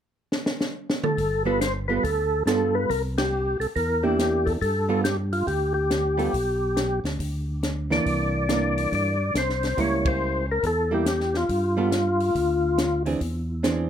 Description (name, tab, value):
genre	soul jazz organ trio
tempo	140 BPM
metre	4/4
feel	swing 65% on 8ths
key	unclear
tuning	A4 = 438 Hz
part	compact cocktail drum kit	drums	0.3-13.8 s	hi-hat, kick drum, ride cymbal, snare drum, toms	-29 LUFS	equal	none
part	percussive tonewheel organ	melody	1.0-13.0 s	F4 to D5	-24 LUFS	left 2 dB	slow rotary speaker, overdrive, chorus vibrato
part	tonewheel organ	bass	1.2-13.9 s	G1 to G2	-28 LUFS	equal	overdrive, chorus vibrato, slow rotary speaker
part	archtop guitar, miked and amplified	accompaniment	1.5-13.9 s	E3 to A4	-27 LUFS	right 5 dB	none
room	moderate club reverb, RT60 0.5 s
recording	none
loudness	-22 LUFS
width	side -9 dB against mid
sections	0.0-1.2 A section; 1.2-13.9 B section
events	drum fill 0.3-1.2; band accent 3.1, 10.0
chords	0.0 N.C.; 1.2 G9; 2.9 C9; 4.6 Gadd9; 8.1 C9; 9.8 C#dim7; 11.5 G7(no3); 13.2 Eaug7